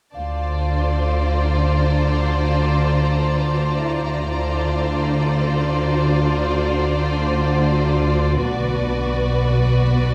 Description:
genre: cinematic, suspense film score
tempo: 58 BPM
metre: 4/4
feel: straight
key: D minor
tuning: A4 = 441 Hz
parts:
  - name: warm studio violin section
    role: melody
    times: 0.1-10.1 s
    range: D5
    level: -32 LUFS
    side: equal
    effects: none
  - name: vibraphone with soft mallets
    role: texture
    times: 0.1-8.5 s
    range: E4 to F5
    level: -36 LUFS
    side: equal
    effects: none
  - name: warm studio violin section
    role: second line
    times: 0.2-10.1 s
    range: F4 to C5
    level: -27 LUFS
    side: equal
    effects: none
  - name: dark studio cello section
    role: bass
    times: 0.2-10.1 s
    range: B2 to D3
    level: -25 LUFS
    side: equal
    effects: none
  - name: rich studio double bass section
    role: bass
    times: 0.2-10.1 s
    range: B1 to D2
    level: -24 LUFS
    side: equal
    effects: none
  - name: organ-like drone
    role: drone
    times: 2.8-10.1 s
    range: B1 to D2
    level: -29 LUFS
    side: equal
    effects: ensemble chorus, built-in reverb, phaser
  - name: rich studio violin section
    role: texture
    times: 0.2-7.9 s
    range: A5 to Bb5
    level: -36 LUFS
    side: equal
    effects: none
room: wet scoring stage reverb, RT60 1.9 s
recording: heard from further back in the room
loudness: -20 LUFS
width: mono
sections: 0.2-10.1 A section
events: none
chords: 0.2 Dm7; 8.4 Bm

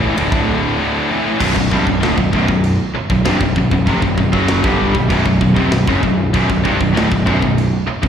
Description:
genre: heavy metal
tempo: 97 BPM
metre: 4/4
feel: straight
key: B minor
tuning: A4 = 439 Hz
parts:
  - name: heavy high-gain guitar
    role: riff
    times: 0.0-8.1 s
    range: B1 to G3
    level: -20 LUFS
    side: right 9 dB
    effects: distortion, slapback echo
  - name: tight distorted guitar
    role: riff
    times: 0.0-8.1 s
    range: B1 to G3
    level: -19 LUFS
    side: left 9 dB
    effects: distortion, slapback echo
  - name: fuzz picked electric bass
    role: bass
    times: 0.0-8.1 s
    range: B0 to A1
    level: -18 LUFS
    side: equal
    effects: overdrive
  - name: tight metal drum kit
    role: drums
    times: 0.2-8.1 s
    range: crash cymbal, kick drum, ride cymbal, snare drum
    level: -21 LUFS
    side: equal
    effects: none
  - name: overdriven electric guitar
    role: riff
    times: 1.4-8.1 s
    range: B1 to G3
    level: -20 LUFS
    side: equal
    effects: slapback echo
room: small room reverb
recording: live gig heard through the venue's PA, recital hall reverb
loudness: -13 LUFS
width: side -8 dB against mid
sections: 0.0-1.4 A section; 1.4-8.1 B section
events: none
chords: 0.0 D5; 1.4 Bm

